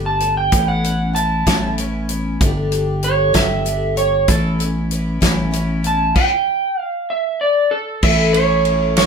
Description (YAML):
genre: folk rock and heartland rock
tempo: 64 BPM (dotted quarters)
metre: 6/8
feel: straight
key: A mixolydian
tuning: A4 = 438 Hz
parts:
  - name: picked twelve-string acoustic guitar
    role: accompaniment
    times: 0.0-9.1 s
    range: A2 to G4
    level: -24 LUFS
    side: left 4 dB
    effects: none
  - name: fingered electric bass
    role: bass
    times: 0.0-9.1 s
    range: G1 to A1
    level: -20 LUFS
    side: equal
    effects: none
  - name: electric slide guitar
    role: melody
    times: 0.1-9.1 s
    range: A4 to A5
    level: -17 LUFS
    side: right 3 dB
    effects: none
  - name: natural country drum kit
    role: drums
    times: 0.2-9.1 s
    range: crash cymbal, hi-hat, kick drum, ride cymbal, snare drum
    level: -18 LUFS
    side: equal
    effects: none
room: moderate studio reverb, RT60 0.8 s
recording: band playing live in one room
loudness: -15 LUFS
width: side -6 dB against mid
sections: 0.0-8.0 A section; 8.0-9.1 B section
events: electric slide guitar solo 0.0-8.0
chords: 0.0 Gsus2; 0.5 Aadd9; 2.4 Gsus2; 4.3 Aadd9; 6.2 N.C.; 8.0 A